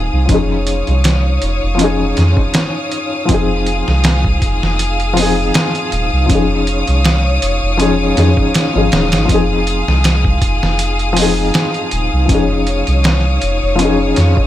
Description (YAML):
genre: trip hop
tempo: 80 BPM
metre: 4/4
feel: swing 54% on 16ths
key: unclear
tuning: A4 = 441 Hz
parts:
  - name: felt-muted upright piano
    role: accompaniment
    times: 0.0-14.5 s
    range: F3 to Ab4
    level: -17 LUFS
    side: left 2 dB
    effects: tremolo, tape echo
  - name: rich studio string section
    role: sustained chords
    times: 0.0-14.5 s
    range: Ab4 to Eb6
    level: -20 LUFS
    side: left 2 dB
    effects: none
  - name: soft dub sub bass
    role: bass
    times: 0.0-14.3 s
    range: Eb1 to F2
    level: -15 LUFS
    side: equal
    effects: none
  - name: trip hop sampler-style drum kit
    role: drums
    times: 0.3-14.5 s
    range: hi-hat, kick drum, snare drum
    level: -16 LUFS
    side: right 1 dB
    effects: none
room: studio reverb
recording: none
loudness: -12 LUFS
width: side -13 dB against mid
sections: 0.0-14.5 A section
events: none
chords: 0.3 Dbadd9/F; 3.3 Fm7; 6.3 Dbadd9/F; 9.3 Fm7; 12.3 Dbadd9/F